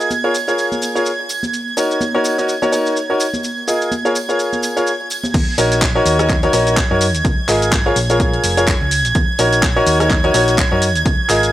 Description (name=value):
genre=piano house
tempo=126 BPM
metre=4/4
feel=swing 57% on 16ths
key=Eb minor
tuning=A4 = 444 Hz
part: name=warm studio violin section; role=sustained chords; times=0.0-11.5 s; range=Ab6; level=-21 LUFS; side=right 4 dB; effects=sidechain pumping
part: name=bright upright piano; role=riff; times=0.0-11.5 s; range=Eb4 to Eb5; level=-17 LUFS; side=left 1 dB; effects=sidechain pumping, tape echo
part: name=garage drum kit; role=drums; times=0.0-11.5 s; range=crash cymbal, handclaps, hi-hat, rim click, shaker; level=-22 LUFS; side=equal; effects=studio reverb
part: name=tambourine and congas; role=percussion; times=0.0-5.3 s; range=none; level=-26 LUFS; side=equal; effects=none
part: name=hollow-body short-scale fingered electric bass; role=bass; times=5.3-11.5 s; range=F1 to Gb2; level=-20 LUFS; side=equal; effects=sidechain pumping
part: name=electronic kick drum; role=drums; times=5.3-11.2 s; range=none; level=-17 LUFS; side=equal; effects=overdrive, studio reverb
room=light reverb, studio reverb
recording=dry, gritty hardware recording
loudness=-13 LUFS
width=side -14 dB against mid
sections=0.0-5.3 A section; 5.3-11.5 B section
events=drop 5.3-11.5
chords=0.3 Bbm7; 1.5 Ebm7; 3.4 Db6; 4.2 Bbm7; 5.3 Ebm7; 7.2 Db6; 8.0 Bbm7; 9.2 Ebm7